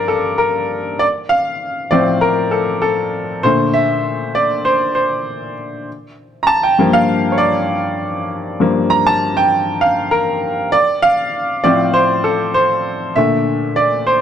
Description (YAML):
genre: soul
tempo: 99 BPM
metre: 4/4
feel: swing 54% on 16ths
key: unclear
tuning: A4 = 440 Hz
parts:
  - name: clear grand piano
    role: solo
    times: 0.0-14.2 s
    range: G2 to Bb5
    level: -14 LUFS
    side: equal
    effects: none
room: moderate echo chamber reverb, RT60 1.7 s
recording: dark, warm production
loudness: -13 LUFS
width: side -9 dB against mid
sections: 0.0-14.2 A section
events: grand piano solo 0.0-14.2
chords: 0.0 Gm7; 1.0 Bbmaj9; 5.9 Gm7; 10.7 Amadd11; 13.2 Bbmaj7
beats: 0.41 | 1.01 1.62 2.23 2.84 | 3.44 4.05 4.66 5.26 | 5.87 6.48 7.09 7.69 | 8.30 8.91 9.52 10.12 | 10.73 11.34 11.95 12.55 | 13.16 13.77